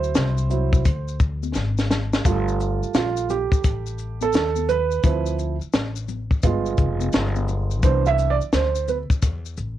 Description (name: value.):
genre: hip hop, jazz-hop.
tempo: 86 BPM.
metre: 4/4.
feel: swing 66% on 16ths.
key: unclear.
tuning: A4 = 440 Hz.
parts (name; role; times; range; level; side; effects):
warm upright piano; accompaniment; 0.0-9.0 s; E3 to F5; -24 LUFS; right 8 dB; cassette tape.
upright bass; bass; 0.0-9.8 s; F1 to E2; -24 LUFS; left 1 dB; none.
maracas and congas; percussion; 0.0-9.8 s; none; -35 LUFS; left 13 dB; none.
compact cocktail drum kit; drums; 0.2-9.8 s; hi-hat, kick drum, shaker, snare drum; -20 LUFS; left 1 dB; cassette tape.
room: little or no reverb.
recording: home recording on cassette.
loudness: -19 LUFS.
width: side -12 dB against mid.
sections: 0.0-2.2 A section; 2.2-9.8 B section.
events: upright piano solo 0.0-2.2, 2.2-9.8; drum fill 1.6-2.2.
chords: 0.0 D7; 2.2 Gm9; 5.0 Dm7; 6.4 G7b9; 7.8 Cmaj9.